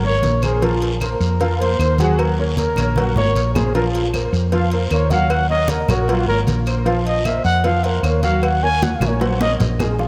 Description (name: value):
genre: Afro-Cuban jazz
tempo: 154 BPM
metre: 4/4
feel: straight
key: unclear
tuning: A4 = 441 Hz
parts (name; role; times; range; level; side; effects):
- warm grand piano; accompaniment; 0.0-10.1 s; F3 to Gb5; -25 LUFS; equal; ensemble chorus
- hollow-body short-scale fingered electric bass; bass; 0.0-10.1 s; Ab1 to F2; -22 LUFS; equal; none
- congas; percussion; 0.0-10.1 s; none; -28 LUFS; equal; none
- breathy trumpet; melody; 0.1-9.5 s; F4 to Ab5; -24 LUFS; equal; analog delay
- cowbell and bongos; percussion; 0.2-10.1 s; none; -29 LUFS; equal; none
- guiro; percussion; 0.2-10.1 s; none; -37 LUFS; equal; none
- claves; percussion; 0.4-10.0 s; none; -37 LUFS; equal; none
room: moderate lush hall reverb, RT60 1.9 s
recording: dreamy mix soaked in reverb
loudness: -18 LUFS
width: mono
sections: 0.0-10.0 A section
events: trumpet solo 0.0-10.0; drum fill 2.6-3.7, 8.8-10.0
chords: 0.0 Eb7(no3) (rootless); 0.6 Bbsus2; 2.2 Ebm7; 3.7 Bbsus2; 5.3 Ebm7; 6.9 Bbsus2; 8.4 Ebm7